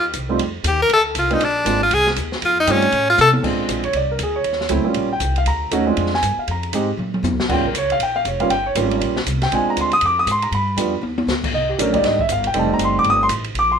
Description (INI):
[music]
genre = jazz, small-group swing and bop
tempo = 237 BPM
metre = 4/4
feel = swing 60% on 8ths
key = Bb mixolydian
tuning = A4 = 440 Hz
[part]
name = edgy tenor saxophone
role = melody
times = 0.0-3.3 s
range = Db4 to Bb4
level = -15 LUFS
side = left 2 dB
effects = plate reverb
[part]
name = upright bass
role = bass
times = 0.0-13.8 s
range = F1 to C3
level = -24 LUFS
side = equal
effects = none
[part]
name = open jazz drum kit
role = drums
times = 0.1-13.6 s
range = crash cymbal, hi-hat, kick drum, ride cymbal, snare drum, toms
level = -25 LUFS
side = equal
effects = none
[part]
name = warm concert grand piano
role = accompaniment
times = 0.3-13.8 s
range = Gb3 to Eb6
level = -18 LUFS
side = right 2 dB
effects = none
[sound]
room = moderate studio reverb, RT60 0.5 s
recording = none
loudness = -16 LUFS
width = side -7 dB against mid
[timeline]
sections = 0.0-3.4 A section; 3.4-13.8 A section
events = tenor saxophone solo 0.0-3.4; drum fill 3.2, 7.0-7.5, 11.0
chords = 0.4 F5; 1.4 Bb9; 2.4 F9; 3.4 Bb9; 4.5 Eb9; 5.5 Bb9; 6.5 Fm7; 7.0 Bb; 7.5 Eb9 (rootless); 9.5 Bb9; 10.5 G7; 11.5 Cm7; 12.5 F9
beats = 0.14 | 0.39 0.65 0.90 1.15 | 1.41 1.66 1.92 2.17 | 2.42 2.68 2.93 3.18 | 3.44 3.69 3.94 4.20 | 4.45 4.71 4.96 5.21 | 5.47 5.72 5.97 6.23 | 6.48 6.73 6.99 7.24 | 7.49 7.75 8.00 8.25 | 8.50 8.76 9.01 9.26 | 9.52 9.77 10.02 10.27 | 10.53 10.78 11.03 11.28 | 11.54 11.79 12.04 12.29 | 12.54 12.80 13.05 13.30 | 13.55